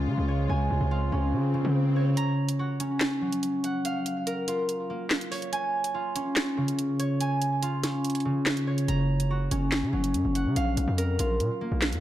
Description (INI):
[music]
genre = hip hop, drill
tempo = 143 BPM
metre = 4/4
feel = half-time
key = unclear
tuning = A4 = 440 Hz
[part]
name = dark studio string section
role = sustained chords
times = 0.0-2.1 s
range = Db3 to F4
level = -36 LUFS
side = left 2 dB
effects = none
[part]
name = concert harp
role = arpeggios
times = 0.0-12.0 s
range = Db3 to Bb5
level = -26 LUFS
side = equal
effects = tape echo
[part]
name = distorted 808-style bass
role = bass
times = 0.0-2.1, 8.9-12.0 s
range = Gb1 to Db3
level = -27 LUFS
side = equal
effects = distortion
[part]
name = swell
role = sound effects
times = 0.5-2.2 s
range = none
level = -38 LUFS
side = left 1 dB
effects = none
[part]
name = drill drum kit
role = drums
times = 2.2-12.0 s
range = handclaps, hi-hat, snare drum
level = -30 LUFS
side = equal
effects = overdrive
[sound]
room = light reverb, studio reverb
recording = dark, warm production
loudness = -25 LUFS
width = side -13 dB against mid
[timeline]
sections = 0.0-2.2 A section; 2.2-12.0 B section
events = swell 0.5-2.2; break 2.2-8.9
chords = 0.0 Db; 2.2 Gb; 3.8 Bbm; 5.5 Db; 8.9 Gb; 10.6 Bbm